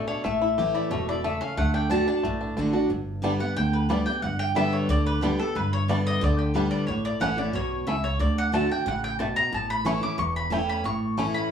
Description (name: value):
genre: bluegrass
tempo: 181 BPM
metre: 4/4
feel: straight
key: unclear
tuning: A4 = 440 Hz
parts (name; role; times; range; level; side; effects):
- bluegrass banjo; melody; 0.0-11.3 s; G3 to G4; -30 LUFS; equal; none
- mandolin; melody; 0.0-11.5 s; G4 to D6; -28 LUFS; left 1 dB; none
- picked steel-string acoustic guitar; accompaniment; 0.0-11.5 s; E2 to G4; -27 LUFS; equal; none
- upright bass; bass; 0.0-11.3 s; E1 to D2; -30 LUFS; right 1 dB; none
room: wet studio reverb, RT60 0.6 s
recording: heard from further back in the room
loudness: -23 LUFS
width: side -7 dB against mid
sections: 0.0-2.9 A section; 2.9-11.5 B section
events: none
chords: 0.2 A; 1.6 D; 2.9 G; 6.9 A; 8.2 D; 9.5 A